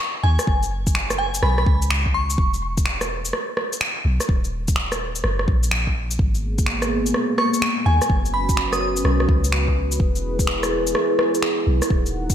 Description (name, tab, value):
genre	future garage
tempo	126 BPM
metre	4/4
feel	swing 66% on 16ths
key	unclear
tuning	A4 = 440 Hz
part	glassy synth bell	melody	0.2-2.4, 7.4-8.9 s	G#5 to D#6	-25 LUFS	equal	chorus, phaser, tape echo
part	soft 808-style bass	bass	0.2-12.3 s	D#1 to D#2	-23 LUFS	equal	sidechain pumping
part	electronic rim click, shaker and finger snaps	drums	0.4-12.3 s	none	-24 LUFS	equal	none
part	electronic kick drum	drums	0.5-12.3 s	none	-21 LUFS	equal	none
part	dark analog pad	sustained chords	6.5-12.3 s	A#3 to F#5	-23 LUFS	equal	chorus, sidechain pumping
room	light reverb, digital ambience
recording	none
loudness	-18 LUFS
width	side -10 dB against mid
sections	0.0-12.3 A section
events	none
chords	0.5 F#5; 2.4 E5; 4.3 D#5; 6.2 G#madd9; 8.1 F#sus4; 10.0 E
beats	0.00 | 0.48 0.95 1.43 1.91 | 2.38 2.86 3.33 3.81 | 4.29 4.76 5.24 5.71 | 6.19 6.67 7.14 7.62 | 8.10 8.57 9.05 9.52 | 10.00 10.48 10.95 11.43 | 11.90